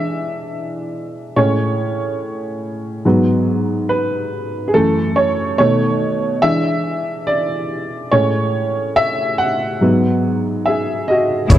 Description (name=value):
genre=lo-fi hip hop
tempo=71 BPM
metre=4/4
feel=swing 62% on 16ths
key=unclear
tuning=A4 = 440 Hz
part: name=clear upright piano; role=accompaniment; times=0.0-11.6 s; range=F#2 to F#5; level=-16 LUFS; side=equal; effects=low-pass filter
part: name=warm symphonic string section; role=sustained chords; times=11.5-11.6 s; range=A2 to G#4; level=-20 LUFS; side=left 3 dB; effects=low-pass filter
part: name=upright bass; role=bass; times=11.5-11.6 s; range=F#1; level=-11 LUFS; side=equal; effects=none
part: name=dusty soul sampler-style drum kit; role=drums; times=11.5-11.6 s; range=hi-hat, kick drum, shaker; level=-9 LUFS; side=left 1 dB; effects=none
part: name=egg shaker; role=percussion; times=11.5-11.6 s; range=none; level=-35 LUFS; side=left 8 dB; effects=none
room=moderate plate reverb, RT60 2.4 s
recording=dark, warm production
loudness=-15 LUFS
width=side -12 dB against mid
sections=0.0-11.5 A section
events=upright piano solo 0.0-11.5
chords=0.0 E7; 1.4 Amaj7; 3.0 G#m7; 4.7 F#m7; 5.6 B9; 6.4 E7; 8.1 Amaj7; 9.8 G#m7